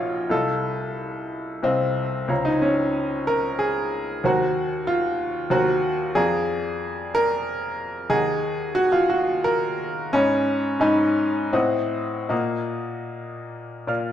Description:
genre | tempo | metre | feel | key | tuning
classical, romantic character piece for solo piano | 73-95 BPM | 3/4 | rubato | Eb minor from 6.2 s | A4 = 439 Hz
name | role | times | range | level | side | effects
bright upright piano | solo | 0.0-14.1 s | Bb1 to F6 | -21 LUFS | equal | none
room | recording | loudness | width
moderate recital hall reverb, RT60 1.5 s | dark, warm production | -21 LUFS | side -10 dB against mid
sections
0.0-14.1 A section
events
none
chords
0.3 F7/C; 2.3 Bbm/Db; 4.2 Cm7b5/Eb; 6.2 Bb7/F; 8.1 Ebm; 10.1 Abm; 11.5 Adim7; 12.3 Ebm/Bb

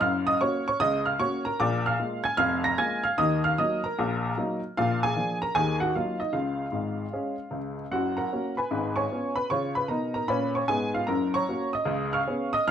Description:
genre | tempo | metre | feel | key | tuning
jazz, stride piano | 152 BPM | 4/4 | swing 65% on 8ths | F# major | A4 = 441 Hz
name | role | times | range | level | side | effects
clear upright piano | solo | 0.0-12.7 s | E#1 to A#6 | -24 LUFS | equal | none
room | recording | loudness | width
moderate club reverb, RT60 0.7 s | dark, warm production | -24 LUFS | side -9 dB against mid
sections
0.0-7.9 A section; 7.9-12.7 A section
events
none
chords
0.0 F#; 1.6 A#7; 3.2 D#m; 4.8 A#7; 5.5 D#m; 6.3 C#; 7.9 F#; 8.7 C#7/G#; 9.5 C#7; 11.1 F#; 11.9 C#7

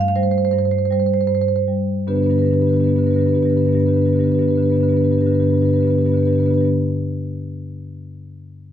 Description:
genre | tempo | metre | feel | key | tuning
classical, contemporary piece for solo marimba | 76 BPM | 4/4 | straight | G major | A4 = 439 Hz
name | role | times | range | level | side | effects
marimba with medium hard mallets | solo | 0.0-6.7 s | G2 to F5 | -16 LUFS | equal | none
room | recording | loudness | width
moderate large studio reverb, RT60 0.9 s | minimal, uncompressed stereo recording | -15 LUFS | side -10 dB against mid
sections
0.0-2.1 A section; 2.1-5.3 B section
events
slowing down 0.0-2.1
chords
0.0 Gsus2; 2.1 G

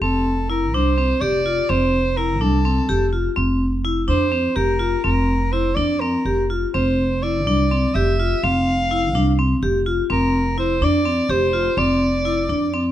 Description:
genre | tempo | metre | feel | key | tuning
contemporary instrumental, chamber music in an uneven meter | 250 BPM (eighths) | 7/8 | straight | F major | A4 = 440 Hz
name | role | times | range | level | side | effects
warm soprano saxophone | melody | 0.0-12.9 s | A4 to F5 | -23 LUFS | right 1 dB | none
vibraphone with hard mallets | arpeggios | 0.0-12.9 s | C4 to G4 | -20 LUFS | left 1 dB | none
upright bass | bass | 0.0-12.9 s | F1 to F2 | -22 LUFS | equal | none
room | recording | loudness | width
light reverb | close, detailed microphones | -17 LUFS | side -12 dB against mid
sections
0.0-12.9 A section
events
none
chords
0.0 F5

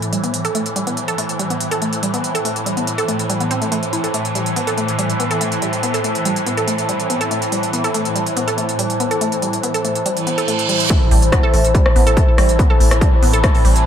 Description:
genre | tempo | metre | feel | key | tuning
driving peak-time techno | 142 BPM | 4/4 | straight | A minor | A4 = 440 Hz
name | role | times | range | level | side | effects
swarming drone | drone | 0.0-13.9 s | A2 to E3 | -23 LUFS | equal | built-in reverb, lush chorus, sidechain pumping
techno drum kit | drums | 0.0-13.8 s | hi-hat, rim click | -23 LUFS | equal | sidechain pumping on hats, gated reverb
deep dark ambient pad | texture | 0.0-13.9 s | E4 to A5 | -23 LUFS | equal | chorus, built-in reverb, sidechain pumping
resonant blip pluck | riff | 0.1-13.7 s | G3 to A4 | -22 LUFS | equal | chorus, sidechain pumping, ping-pong delay
reverse cymbal and impact | sound effects | 10.2-12.6 s | none | -22 LUFS | right 3 dB | none
electronic kick drum | drums | 10.9-13.5 s | none | -14 LUFS | equal | none
saturated sub bass | bass | 11.1-13.9 s | A1 | -15 LUFS | equal | tube saturation, sidechain pumping, low-pass filter
room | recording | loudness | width
moderate plate reverb, RT60 1.8 s | bright 1980s-style digital production | -15 LUFS | side -9 dB against mid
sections
0.0-10.9 A section; 10.9-13.9 B section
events
reverse cymbal 10.2-10.9; drop 10.9-13.9; impact 10.9-12.6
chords
0.0 Am

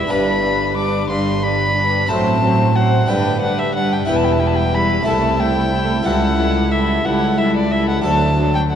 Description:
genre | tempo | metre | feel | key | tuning
classical, baroque-style concerto movement with solo episodes | 60 BPM (dotted quarters) | 6/8 | straight | unclear | A4 = 441 Hz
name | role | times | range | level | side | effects
warm chamber violin section | melody | 0.0-8.8 s | A4 to C5 | -26 LUFS | left 7 dB | none
warm violin | melody | 0.0-8.8 s | D5 to D6 | -20 LUFS | left 1 dB | none
rich chamber violin section | second line | 0.0-8.8 s | C4 to E4 | -24 LUFS | left 3 dB | none
harpsichord | accompaniment | 0.0-8.8 s | C2 to C5 | -22 LUFS | equal | none
warm chamber viola section | accompaniment | 0.0-8.8 s | F#3 to A3 | -24 LUFS | equal | none
dark chamber cello section | bass | 0.1-8.8 s | C2 to A2 | -22 LUFS | right 3 dB | none
warm studio double bass section | bass | 0.1-8.8 s | E1 to D2 | -23 LUFS | right 3 dB | none
room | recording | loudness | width
wet concert hall reverb, RT60 2.5 s | worn, warbling old tape, cassette tape, warbly pitch drift | -14 LUFS | side -8 dB against mid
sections
0.0-8.8 A section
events
none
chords
0.1 G; 2.1 F#dim/A; 3.1 G; 4.1 Em; 5.1 Am7/C; 6.1 A7/C#; 8.0 D

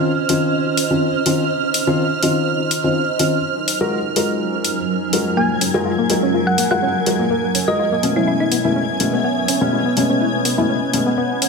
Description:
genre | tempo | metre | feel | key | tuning
deep house | 124 BPM | 4/4 | swing 53% on 16ths | unclear | A4 = 440 Hz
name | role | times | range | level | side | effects
warm analog pad | sustained chords | 0.0-11.5 s | Gb3 to Bb5 | -29 LUFS | right 3 dB | chorus
felt-muted upright piano | stabs | 0.0-11.1 s | B2 to Bb4 | -20 LUFS | left 2 dB | ping-pong delay
analog string pad | texture | 0.0-11.5 s | F6 to Ab6 | -26 LUFS | right 3 dB | ensemble chorus
granular cloud pad | texture | 0.0-11.5 s | Gb3 to Ab5 | -23 LUFS | right 2 dB | built-in reverb
electronic hi-hat | drums | 0.3-11.5 s | none | -22 LUFS | left 2 dB | studio reverb
thumb-piano-like synth pluck | melody | 5.4-8.8 s | E4 to Ab5 | -22 LUFS | equal | chorus, ping-pong delay
soft round pluck | arpeggios | 5.4-11.5 s | Bb3 to F4 | -23 LUFS | left 1 dB | chorus, ping-pong delay
room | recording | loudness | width
wet lush hall reverb, RT60 2.1 s | none | -16 LUFS | side -4 dB against mid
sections
0.0-11.5 A section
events
filter sweep on analog synth pad 0.0-11.5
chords
0.0 Dbmaj9; 3.4 Gbmaj9; 8.0 Amaj9

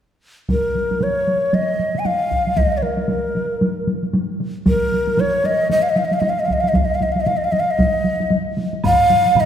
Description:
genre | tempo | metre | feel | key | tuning
japanese traditional, taiko drum ensemble | 115 BPM | 4/4 | swing 60% on 16ths | Eb suspended pentatonic | A4 = 443 Hz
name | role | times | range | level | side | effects
breathy hollow shakuhachi | melody | 0.5-9.5 s | Bb4 to Ab5 | -18 LUFS | equal | none
taiko ensemble | percussion | 0.5-9.5 s | none | -21 LUFS | equal | none
taiko ensemble | percussion | 0.5-9.0 s | none | -24 LUFS | equal | none
taiko ensemble | percussion | 8.8-9.5 s | none | -23 LUFS | left 6 dB | none
woodblock | percussion | 8.8-9.5 s | none | -31 LUFS | right 4 dB | none
room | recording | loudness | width
wet scoring stage reverb, RT60 2.0 s | recorded in a church or concert hall | -16 LUFS | side -9 dB against mid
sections
0.5-8.8 A section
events
none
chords
none

